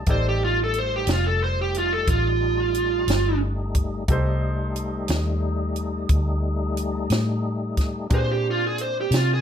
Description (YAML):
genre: slow blues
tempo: 60 BPM (dotted quarters)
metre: 12/8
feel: straight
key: F mixolydian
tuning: A4 = 441 Hz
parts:
  - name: clear upright piano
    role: accompaniment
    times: 0.0-9.4 s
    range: D4 to D5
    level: -33 LUFS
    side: right 1 dB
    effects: none
  - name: tonewheel organ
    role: sustained chords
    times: 0.0-9.4 s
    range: G3 to Eb4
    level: -31 LUFS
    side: left 4 dB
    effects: slow rotary speaker, chorus vibrato
  - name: vintage muted fingered electric bass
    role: bass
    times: 0.0-9.4 s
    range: F1 to C3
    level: -24 LUFS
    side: equal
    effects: none
  - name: smooth overdriven lead guitar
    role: melody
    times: 0.1-9.4 s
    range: F4 to C5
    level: -23 LUFS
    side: right 3 dB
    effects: slapback echo, plate reverb
  - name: compact cocktail drum kit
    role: drums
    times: 0.1-9.3 s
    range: hi-hat, kick drum, snare drum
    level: -24 LUFS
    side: equal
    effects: none
room: light reverb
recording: none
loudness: -21 LUFS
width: side -8 dB against mid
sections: 0.0-9.4 A section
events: none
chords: 0.0 F13; 8.1 Bb13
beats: | 0.07 1.07 2.08 3.08 | 4.08 5.09 6.09 7.10 | 8.11 9.11